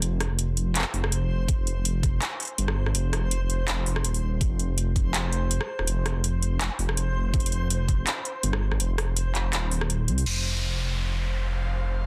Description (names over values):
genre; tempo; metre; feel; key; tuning
half-time drum and bass; 164 BPM; 4/4; swing 54% on 16ths, half-time; unclear; A4 = 440 Hz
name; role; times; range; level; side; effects
dark detuned saw bass; bass; 0.0-12.1 s; Eb1 to C2; -28 LUFS; equal; none
drum and bass drum kit; drums; 0.0-10.3 s; crash cymbal, handclaps, hi-hat, rim click; -32 LUFS; equal; none
backwards swelling texture; texture; 0.0-12.1 s; C5 to F5; -41 LUFS; equal; built-in reverb
electronic kick drum; drums; 1.5-2.1, 4.4-5.0, 7.3-8.0 s; none; -27 LUFS; equal; none
downlifter; sound effects; 10.3-12.1 s; none; -36 LUFS; equal; none
room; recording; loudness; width
little or no reverb; dense, heavily limited modern master; -26 LUFS; mono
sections
0.0-10.3 A section; 10.3-12.1 B section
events
kick drops out 9.5-10.3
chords
0.0 F5